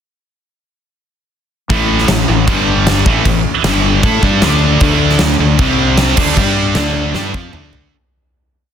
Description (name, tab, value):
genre	hard rock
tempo	154 BPM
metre	4/4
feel	straight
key	unclear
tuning	A4 = 441 Hz
part	overdriven electric guitar	riff	1.7-7.9 s	G2 to A4	-20 LUFS	equal	none
part	scooped high-gain guitar	riff	1.7-7.9 s	G2 to A4	-17 LUFS	right 10 dB	distortion
part	sludgy distorted guitar	riff	1.7-7.9 s	G2 to A4	-18 LUFS	left 9 dB	overdrive
part	fuzz fingered electric bass	bass	1.7-7.9 s	G1 to A2	-17 LUFS	equal	overdrive
part	huge arena drum kit	drums	1.7-7.8 s	crash cymbal, kick drum, snare drum, toms	-15 LUFS	equal	none
room	light reverb, small room reverb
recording	dense, heavily limited modern master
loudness	-10 LUFS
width	side -8 dB against mid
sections	1.7-7.9 riff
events	fade-out 6.4-7.9; drum fill 7.2-7.9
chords	1.7 A5; 2.5 G5; 3.1 A5; 3.6 G5; 4.0 A5; 4.4 D5; 5.6 C5; 6.2 D5; 6.4 G5; 6.8 D5